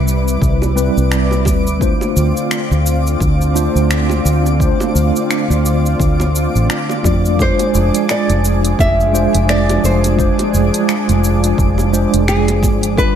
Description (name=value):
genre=sunset chillout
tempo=86 BPM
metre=4/4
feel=swing 57% on 16ths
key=unclear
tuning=A4 = 441 Hz
part: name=mellow tine electric piano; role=accompaniment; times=0.0-13.2 s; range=G3 to D5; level=-18 LUFS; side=moving between left 4 dB and right 4 dB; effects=medium stereo tremolo, auto-pan, digital delay
part: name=lush unison pad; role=sustained chords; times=0.0-13.2 s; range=C3 to B4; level=-22 LUFS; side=equal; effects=chorus
part: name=fingered electric bass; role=bass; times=0.0-13.1 s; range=F1 to F2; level=-15 LUFS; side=equal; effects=tube saturation
part: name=twinkling granular texture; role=texture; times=0.0-13.2 s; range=D5 to D6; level=-27 LUFS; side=right 1 dB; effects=built-in reverb
part: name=deep house drum kit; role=drums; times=0.1-13.1 s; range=cabasa, finger snaps, hi-hat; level=-23 LUFS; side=equal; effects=none
part: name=electronic kick drum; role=drums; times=0.4-13.1 s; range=none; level=-17 LUFS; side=equal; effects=none
part: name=bongos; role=percussion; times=0.6-12.8 s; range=none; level=-28 LUFS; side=right 5 dB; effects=none
part: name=nylon-string guitar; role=melody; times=7.4-13.2 s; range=Ab4 to E5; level=-18 LUFS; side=equal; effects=digital delay
room=light reverb, digital ambience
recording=none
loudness=-12 LUFS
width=side -9 dB against mid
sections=0.0-13.2 A section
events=none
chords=0.0 Cmaj7; 1.8 Dm7; 7.4 Fm6